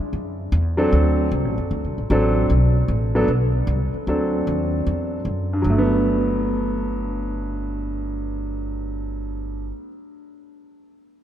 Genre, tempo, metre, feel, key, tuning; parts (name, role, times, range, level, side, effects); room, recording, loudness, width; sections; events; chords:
jazz; 152 BPM; 4/4; swing 66% on 8ths; G major; A4 = 438 Hz
upright bass; bass; 0.0-9.7 s; F#1 to F#2; -22 LUFS; equal
warm baby grand piano; melody; 0.8-9.9 s; G2 to A4; -22 LUFS; equal
moderate cathedral reverb, RT60 5.0 s; in a vast, echoing space; -19 LUFS; side -10 dB against mid
0.0-5.7 A section; 5.7-8.8 B section
0.0 N.C.; 0.9 D7; 2.5 B7(no3); 4.1 D7; 5.7 Gmaj9